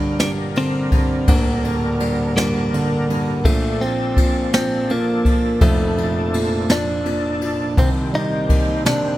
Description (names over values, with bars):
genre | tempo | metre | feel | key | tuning
six-eight pop ballad | 55 BPM (dotted quarters) | 6/8 | straight | Bb major | A4 = 440 Hz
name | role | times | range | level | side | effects
direct-recorded clean electric guitar | melody | 0.0-9.2 s | A3 to Eb4 | -21 LUFS | left 1 dB | none
warm upright piano | accompaniment | 0.0-9.2 s | D1 to Bb3 | -22 LUFS | right 2 dB | none
overdriven tonewheel organ | sustained chords | 0.0-9.2 s | Bb2 to Bb4 | -28 LUFS | left 1 dB | chorus vibrato, slow rotary speaker
jazz brush drum kit | drums | 0.2-9.0 s | kick drum, ride cymbal, snare drum | -20 LUFS | equal | none
fingerpicked steel-string acoustic guitar | arpeggios | 7.8-9.2 s | Eb3 to G4 | -28 LUFS | left 2 dB | none
room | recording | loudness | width
small room ambience | none | -16 LUFS | side -15 dB against mid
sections
0.0-9.2 A section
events
none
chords
0.0 Gm; 3.4 Bbmaj7; 7.8 Cm7